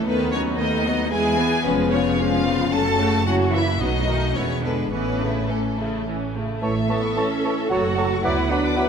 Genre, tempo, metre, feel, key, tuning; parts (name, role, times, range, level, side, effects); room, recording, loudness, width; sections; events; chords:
quick classical-period movement for symphony orchestra; 112 BPM; 3/4; rubato; A major; A4 = 442 Hz
clear chamber violin section; melody; 0.0-8.9 s; A4 to A5; -27 LUFS; left 4 dB
rich chamber violin section; second line; 0.0-8.9 s; G#3 to D6; -29 LUFS; left 4 dB
rich chamber viola section; accompaniment; 0.0-8.9 s; C#3 to B4; -27 LUFS; right 2 dB
dark French horn section; sustained chords; 0.0-8.9 s; G#3 to F#4; -26 LUFS; left 6 dB
rich chamber cello section; bass; 0.0-8.9 s; A3 to A4; -26 LUFS; right 3 dB
clear chamber double bass section; bass; 0.1-8.7 s; E1 to E2; -26 LUFS; right 4 dB
clear clarinet; second line; 6.6-8.9 s; A4 to B4; -33 LUFS; left 1 dB
concert flute; second line; 6.6-8.8 s; F#5 to A5; -31 LUFS; left 1 dB
mellow cor anglais; second line; 6.6-8.9 s; C#5 to D5; -31 LUFS; right 5 dB
mellow bassoon; accompaniment; 6.6-8.9 s; E3 to F#3; -30 LUFS; right 2 dB
wet concert hall reverb, RT60 2.3 s; -19 LUFS; side -7 dB against mid
0.0-6.6 A section; 6.6-8.9 A section
0.1 B7/D#; 1.1 E; 1.7 C#7/E#; 2.7 F#m; 3.3 F#7; 3.8 B7; 4.4 E7; 4.9 A; 7.7 F#m; 8.2 Bm/D